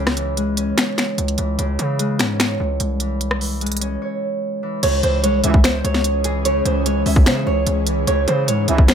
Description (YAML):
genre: hip hop, trap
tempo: 148 BPM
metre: 4/4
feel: half-time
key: C# harmonic minor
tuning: A4 = 440 Hz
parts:
  - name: Celtic harp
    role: accompaniment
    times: 0.0-8.9 s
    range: C#3 to C#5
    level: -23 LUFS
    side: left 1 dB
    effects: none
  - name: distorted 808-style bass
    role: bass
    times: 0.0-8.9 s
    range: B#1 to C#3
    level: -22 LUFS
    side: equal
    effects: distortion
  - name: trap drum kit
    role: drums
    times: 0.1-8.9 s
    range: crash cymbal, finger snaps, hi-hat, kick drum, rim click, snare drum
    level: -18 LUFS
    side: equal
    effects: none
  - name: flamenco guitar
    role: melody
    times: 4.8-8.9 s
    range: G#4 to E5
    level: -21 LUFS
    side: right 2 dB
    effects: none
  - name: ethereal airy pad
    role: sustained chords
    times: 5.7-8.9 s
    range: E3 to G#4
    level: -28 LUFS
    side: right 2 dB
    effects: ensemble chorus, built-in reverb
  - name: mellow brass ensemble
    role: stabs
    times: 5.4-5.6, 8.7-8.8 s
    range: C#2 to E3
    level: -23 LUFS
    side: right 7 dB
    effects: none
room: light reverb, small room ambience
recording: none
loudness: -16 LUFS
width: side -8 dB against mid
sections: 0.0-4.8 A section; 4.8-8.9 B section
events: silent gap 4.0-4.8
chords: 0.0 C#m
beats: 0.37 0.78 1.18 | 1.59 1.99 2.40 2.80 | 3.21 3.61 4.02 4.42 | 4.83 5.24 5.64 6.05 | 6.45 6.86 7.26 7.67 | 8.07 8.48 8.88